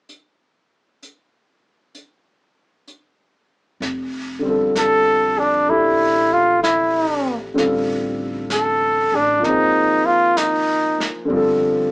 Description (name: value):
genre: jazz ballad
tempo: 64 BPM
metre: 4/4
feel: swing 66% on 8ths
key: F major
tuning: A4 = 440 Hz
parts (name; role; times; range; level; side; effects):
- jazz brush drum kit; drums; 0.1-11.9 s; brushed snare drum, hi-hat, snare drum; -30 LUFS; equal; none
- upright bass; bass; 3.8-11.9 s; F1 to A1; -31 LUFS; equal; none
- clear grand piano; accompaniment; 4.4-11.9 s; D3 to C5; -20 LUFS; equal; none
- mellow trumpet; melody; 4.8-11.1 s; D4 to A4; -15 LUFS; equal; none
room: moderate club reverb, RT60 0.5 s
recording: heard from further back in the room, small speaker sound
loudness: -15 LUFS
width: side -25 dB against mid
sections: 0.1-3.8 A section; 3.8-11.9 B section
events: none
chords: 0.1 N.C.; 3.8 Fadd9; 7.6 F69/A; 9.4 Ab; 11.3 Gsus2